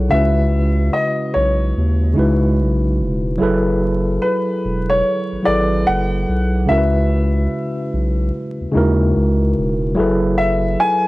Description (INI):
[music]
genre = lo-fi hip hop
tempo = 73 BPM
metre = 4/4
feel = swing 65% on 16ths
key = F# minor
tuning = A4 = 444 Hz
[part]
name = warm upright piano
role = melody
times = 0.0-11.1 s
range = B4 to G#5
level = -19 LUFS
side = left 1 dB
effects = none
[part]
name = tine electric piano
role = accompaniment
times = 0.0-11.1 s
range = C#3 to C#5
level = -18 LUFS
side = equal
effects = overdrive, slow stereo tremolo
[part]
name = saturated sub bass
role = bass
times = 0.0-10.8 s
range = E1 to D#2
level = -18 LUFS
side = equal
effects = transformer saturation
[sound]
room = moderate spring reverb, RT60 1.7 s, studio reverb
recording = worn, warbling old tape, cassette tape, vinyl crackle, warbly pitch drift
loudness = -15 LUFS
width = side -19 dB against mid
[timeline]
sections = 0.0-11.1 A section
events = none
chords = 0.1 C#m11; 3.4 F#m11; 6.7 C#m11; 10.0 F#m11